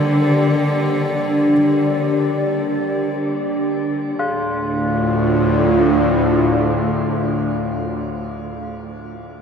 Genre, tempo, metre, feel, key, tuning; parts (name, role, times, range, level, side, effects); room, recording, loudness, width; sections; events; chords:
dark ambient drone; free time; A4 = 440 Hz
dark cello; melody; 0.0-3.2 s; D3; -22 LUFS; equal; shimmer reverb, diffuse ambient delay
dark analog pad; sustained chords; 0.0-7.9 s; A3 to D5; -20 LUFS; right 1 dB; chorus, phaser, shimmer reverb
tubular bells; arpeggios; 0.0-9.4 s; C4 to G4; -27 LUFS; left 1 dB; shimmer reverb, diffuse ambient delay
metallic inharmonic drone; texture; 0.0-4.2 s; D4; -26 LUFS; left 4 dB; chorus, built-in reverb, shimmer reverb
bowed-like drone; drone; 4.6-7.5 s; D2 to A2; -19 LUFS; left 1 dB; built-in reverb
wet huge ambient reverb, RT60 8.5 s; -16 LUFS; side -6 dB against mid
0.0-4.2 A section; 4.2-8.1 B section
0.0 Gm; 4.2 Dm